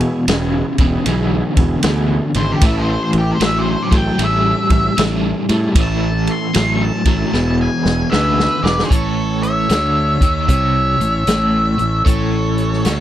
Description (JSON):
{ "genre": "blues rock power trio and southern rock", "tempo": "76 BPM", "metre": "4/4", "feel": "swing 66% on 8ths", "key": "A major", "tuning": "A4 = 439 Hz", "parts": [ { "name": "overdriven tonewheel organ", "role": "sustained chords", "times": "0.0-8.8 s", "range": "G#3 to A4", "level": "-27 LUFS", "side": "right 4 dB", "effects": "slow rotary speaker, chorus vibrato" }, { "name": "crunchy overdriven guitar", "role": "riff", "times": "0.0-13.0 s", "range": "E2 to G3", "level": "-19 LUFS", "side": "equal", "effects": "tremolo" }, { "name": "vintage drum kit", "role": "drums", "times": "0.0-13.0 s", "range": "hi-hat, kick drum, ride cymbal, snare drum", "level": "-17 LUFS", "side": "equal", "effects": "none" }, { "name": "fuzz fingered electric bass", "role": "bass", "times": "0.3-13.0 s", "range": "E1 to A2", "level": "-19 LUFS", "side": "equal", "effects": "overdrive" }, { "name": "octave-fuzz lead guitar", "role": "melody", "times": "2.4-13.0 s", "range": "E4 to C6", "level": "-20 LUFS", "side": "equal", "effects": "distortion" }, { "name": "nasal lead guitar with a parked wah", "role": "second line", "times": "8.1-13.0 s", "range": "G#4 to C#5", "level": "-27 LUFS", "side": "right 4 dB", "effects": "overdrive" } ], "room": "little or no reverb", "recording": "dry, close 1970s-style studio recording", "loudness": "-13 LUFS", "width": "side -12 dB against mid", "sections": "0.0-8.9 A section; 8.9-13.0 B section", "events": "lead electric guitar solo 0.0-8.9; drum fill 7.3-8.9", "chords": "0.0 E; 2.6 A; 7.3 E; 8.9 A" }